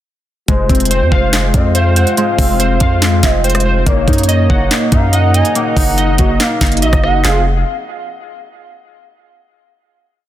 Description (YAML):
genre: hip hop, trap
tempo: 142 BPM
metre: 4/4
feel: half-time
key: F phrygian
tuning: A4 = 440 Hz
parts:
  - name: gliding portamento lead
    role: second line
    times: 0.5-7.4 s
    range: C5 to Ab5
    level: -20 LUFS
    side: right 2 dB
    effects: chorus, phaser, ping-pong delay
  - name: warm French horn section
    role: sustained chords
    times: 0.5-7.4 s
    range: C3 to F4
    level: -23 LUFS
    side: left 2 dB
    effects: stereo widening
  - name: warbly lo-fi synth keys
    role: arpeggios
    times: 0.5-7.4 s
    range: Ab3 to Gb5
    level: -17 LUFS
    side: left 1 dB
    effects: chorus, ping-pong delay
  - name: long sustained 808-style bass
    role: bass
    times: 0.5-7.6 s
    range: F1 to Gb2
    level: -14 LUFS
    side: equal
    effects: none
  - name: trap drum kit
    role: drums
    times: 0.5-7.3 s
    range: handclaps, hi-hat, kick drum, rim click, snare drum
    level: -15 LUFS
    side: equal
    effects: none
room: light reverb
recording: dense, heavily limited modern master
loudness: -10 LUFS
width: side -12 dB against mid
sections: 0.5-7.2 hook; 7.2-8.9 final chord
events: none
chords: 0.5 Fm; 3.9 Gb6; 7.2 Fm